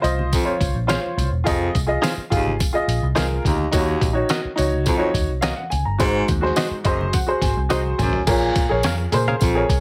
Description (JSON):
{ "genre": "uptempo 1960s-style soul", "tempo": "106 BPM", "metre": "4/4", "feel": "straight", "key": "unclear", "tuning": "A4 = 440 Hz", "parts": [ { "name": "clear upright piano", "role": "accompaniment", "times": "0.0-9.8 s", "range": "Ab2 to Bb5", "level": "-25 LUFS", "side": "equal", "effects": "none" }, { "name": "vintage muted picked electric bass", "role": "bass", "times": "0.0-9.8 s", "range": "Fb1 to Bb2", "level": "-26 LUFS", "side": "equal", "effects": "none" }, { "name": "trip hop sampler-style drum kit", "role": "drums", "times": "0.0-9.8 s", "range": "crash cymbal, hi-hat, kick drum, snare drum, toms", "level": "-26 LUFS", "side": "equal", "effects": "none" }, { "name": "congas", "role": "percussion", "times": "0.0-9.5 s", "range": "none", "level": "-37 LUFS", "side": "equal", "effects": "none" }, { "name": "tambourine", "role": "percussion", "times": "0.0-9.8 s", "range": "none", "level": "-37 LUFS", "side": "equal", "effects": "none" }, { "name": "warm baritone saxophone", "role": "riff", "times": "0.3-9.6 s", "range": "Eb2 to Bb2", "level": "-25 LUFS", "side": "equal", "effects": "none" }, { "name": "direct-recorded clean electric guitar", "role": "stabs", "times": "0.9-9.4 s", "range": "Db4 to F5", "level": "-27 LUFS", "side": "equal", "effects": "slapback echo" } ], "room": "light reverb", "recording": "heavily compressed radio sound, multiband compression", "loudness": "-20 LUFS", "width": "mono", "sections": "0.0-8.3 A section; 8.3-9.8 B section", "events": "upright piano fill 6.6-8.3; drum fill 7.7-8.3", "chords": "0.0 Dbmaj7; 1.5 Fm7; 3.7 Ebm7; 6.0 Ab7; 8.3 Bbm7" }